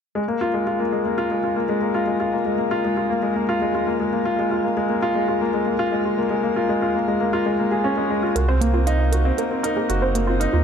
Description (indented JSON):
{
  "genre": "piano and strings electronica",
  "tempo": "117 BPM",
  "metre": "4/4",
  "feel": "straight",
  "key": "unclear",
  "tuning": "A4 = 440 Hz",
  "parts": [
    { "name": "clear grand piano", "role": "riff", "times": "0.2-10.6 s", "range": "Ab3 to Ab4", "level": "-20 LUFS", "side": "left 1 dB", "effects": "ping-pong delay, shimmer reverb" },
    { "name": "analog pluck", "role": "arpeggios", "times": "8.4-10.6 s", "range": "Bb3 to F5", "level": "-26 LUFS", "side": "right 3 dB", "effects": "chorus, ping-pong delay, shimmer reverb" },
    { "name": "warm sub bass", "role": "bass", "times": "8.4-10.6 s", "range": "Gb1 to Eb2", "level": "-20 LUFS", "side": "right 1 dB", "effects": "none" },
    { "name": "electronic hi-hat", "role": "drums", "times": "8.4-10.5 s", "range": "none", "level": "-32 LUFS", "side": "right 2 dB", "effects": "low-pass filter on hats, low-pass filter on room" }
  ],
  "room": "moderate lush hall reverb, RT60 1.8 s",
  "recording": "none",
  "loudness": "-19 LUFS",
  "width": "side -7 dB against mid",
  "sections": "0.2-10.6 A section",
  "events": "none",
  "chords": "0.2 Bb7(no3); 8.4 Cm7b5"
}